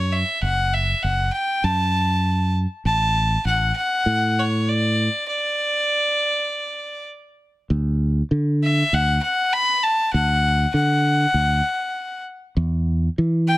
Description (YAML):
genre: indie folk with a building arrangement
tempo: 99 BPM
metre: 4/4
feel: straight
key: D major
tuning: A4 = 440 Hz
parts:
  - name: rich fiddle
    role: melody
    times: 0.0-13.6 s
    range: C#5 to B5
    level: -20 LUFS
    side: left 1 dB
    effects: none
  - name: fingered electric bass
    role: bass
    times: 0.0-13.6 s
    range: F#1 to E3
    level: -20 LUFS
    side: equal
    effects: none
room: light reverb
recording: none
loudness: -18 LUFS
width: side -17 dB against mid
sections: 0.0-7.7 A section; 7.7-13.6 B section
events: break 5.3-7.7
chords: 0.0 F#m; 2.9 Asus4; 7.7 D; 12.6 N.C.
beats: | 0.42 1.03 1.64 2.24 | 2.85 3.46 4.07 4.67 | 5.28 5.89 6.50 7.10 | 7.71 8.32 8.93 9.53 | 10.14 10.75 11.36 11.96 | 12.57 13.18